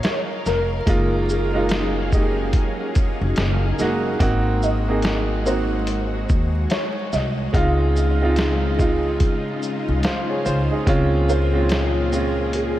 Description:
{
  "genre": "lo-fi hip hop",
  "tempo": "72 BPM",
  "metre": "4/4",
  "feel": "swing 61% on 16ths",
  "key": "Db major",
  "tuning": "A4 = 440 Hz",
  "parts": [
    { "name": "felt-muted upright piano", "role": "melody", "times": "0.0-12.8 s", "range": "Ab4 to F5", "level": "-29 LUFS", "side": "left 1 dB", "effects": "ensemble chorus, low-pass filter, diffuse ambient delay" },
    { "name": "clear upright piano", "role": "accompaniment", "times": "0.0-12.8 s", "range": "Ab3 to F5", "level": "-23 LUFS", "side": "right 2 dB", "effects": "cassette tape, low-pass filter" },
    { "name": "string machine, violins", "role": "sustained chords", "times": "0.0-12.8 s", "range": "Bb2 to F5", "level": "-28 LUFS", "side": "left 2 dB", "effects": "ensemble chorus, low-pass filter" },
    { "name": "lo-fi sampler-style drum kit", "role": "drums", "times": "0.0-12.8 s", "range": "hi-hat, kick drum, shaker, snare drum", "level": "-23 LUFS", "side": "equal", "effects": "none" },
    { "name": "upright bass", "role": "bass", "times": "0.5-12.8 s", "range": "F1 to Eb2", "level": "-22 LUFS", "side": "equal", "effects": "none" }
  ],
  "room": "moderate huge ambient reverb, RT60 8.4 s",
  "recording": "dreamy mix soaked in reverb, vinyl crackle",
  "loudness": "-18 LUFS",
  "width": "side -14 dB against mid",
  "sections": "0.0-12.8 A section",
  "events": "none",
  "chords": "0.0 Bbm9; 0.9 Gbmaj13; 4.2 Ab7; 7.5 Dbmaj7; 10.9 Bbm9/Db",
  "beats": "0.03 | 0.87 1.70 2.53 3.37 | 4.20 5.03 5.87 6.70 | 7.53 8.37 9.20 10.03 | 10.87 11.70 12.53"
}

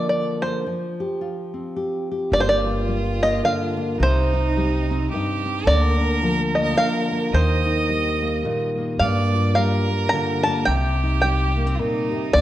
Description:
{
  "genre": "acoustic folk duo or small band",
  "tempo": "108 BPM",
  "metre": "3/4",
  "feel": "swing 59% on 8ths",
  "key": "unclear",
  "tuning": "A4 = 440 Hz",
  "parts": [
    { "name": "bluegrass banjo", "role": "melody", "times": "0.0-12.4 s", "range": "C5 to Bb5", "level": "-22 LUFS", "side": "equal", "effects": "none" },
    { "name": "nylon-string guitar", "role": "accompaniment", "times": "0.0-12.4 s", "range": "G2 to Bb4", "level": "-24 LUFS", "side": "left 1 dB", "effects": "none" },
    { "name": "clear fiddle", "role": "second line", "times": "2.3-12.4 s", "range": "Eb4 to Eb5", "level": "-27 LUFS", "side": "right 4 dB", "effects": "tape echo" },
    { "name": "upright bass", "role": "bass", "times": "2.3-12.4 s", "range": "G1 to G2", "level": "-22 LUFS", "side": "equal", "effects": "none" }
  ],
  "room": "moderate recital hall reverb, RT60 1.7 s",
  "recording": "worn, warbling old tape, cassette tape, warbly pitch drift",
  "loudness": "-19 LUFS",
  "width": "side -13 dB against mid",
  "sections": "0.0-2.3 A section; 2.3-12.4 B section",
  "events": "none",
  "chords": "0.0 Bb/D; 0.6 Fsus2; 2.3 Gm7; 4.0 Cm; 5.7 Bb/D; 7.3 Eb; 9.0 Gm7; 10.7 Cm",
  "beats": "0.09 | 0.65 1.21 1.76 | 2.32 2.88 3.44 | 4.00 4.55 5.11 | 5.67 6.22 6.78 | 7.34 7.89 8.45 | 9.01 9.56 10.12 | 10.68 11.23 11.79 | 12.35"
}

